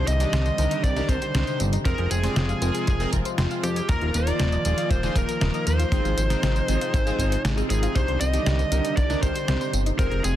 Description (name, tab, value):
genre	synthwave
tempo	118 BPM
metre	4/4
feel	straight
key	C minor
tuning	A4 = 440 Hz
part	bluesy overdriven lead guitar	melody	0.0-10.4 s	G4 to Eb5	-28 LUFS	equal	distortion, digital delay
part	chorused pulse-width pad	sustained chords	0.0-10.4 s	C3 to F4	-31 LUFS	right 1 dB	sidechain pumping
part	analog pluck	arpeggios	0.0-10.3 s	Bb3 to F5	-34 LUFS	left 3 dB	chorus, ping-pong delay
part	chorused polysynth	stabs	0.0-10.2 s	Bb3 to D5	-31 LUFS	right 1 dB	none
part	chorused synth bass	bass	0.0-10.4 s	Eb1 to F2	-24 LUFS	equal	sidechain pumping
part	detuned 8-bit digital drum machine	drums	0.1-10.3 s	hi-hat, snare drum, tambourine	-29 LUFS	equal	none
part	kick drum	drums	0.8-10.1 s	none	-25 LUFS	equal	none
room	light reverb, digital ambience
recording	dense, heavily limited modern master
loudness	-21 LUFS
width	side -12 dB against mid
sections	0.0-10.4 A section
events	kick drops out 7.4-8.0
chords	0.0 Cmadd9; 1.9 Fm; 3.9 Ebsus2; 5.9 Ab6; 8.0 Cmadd9